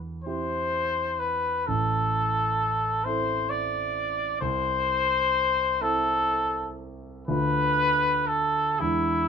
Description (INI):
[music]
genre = classical, romantic duo for trumpet and grand piano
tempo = 36-44 BPM (dotted quarters)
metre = 6/8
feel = rubato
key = A minor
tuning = A4 = 440 Hz
[part]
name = dark concert grand piano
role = accompaniment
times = 0.0-9.3 s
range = A1 to A4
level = -30 LUFS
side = right 2 dB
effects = none
[part]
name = clear trumpet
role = melody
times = 0.2-9.3 s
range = E4 to D5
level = -24 LUFS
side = left 2 dB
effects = none
[sound]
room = light reverb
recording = minimal, uncompressed stereo recording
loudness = -23 LUFS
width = side -7 dB against mid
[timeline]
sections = 0.0-9.3 A section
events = none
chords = 0.0 C/E; 1.7 Am; 4.4 Am/C; 7.3 Bm7b5/D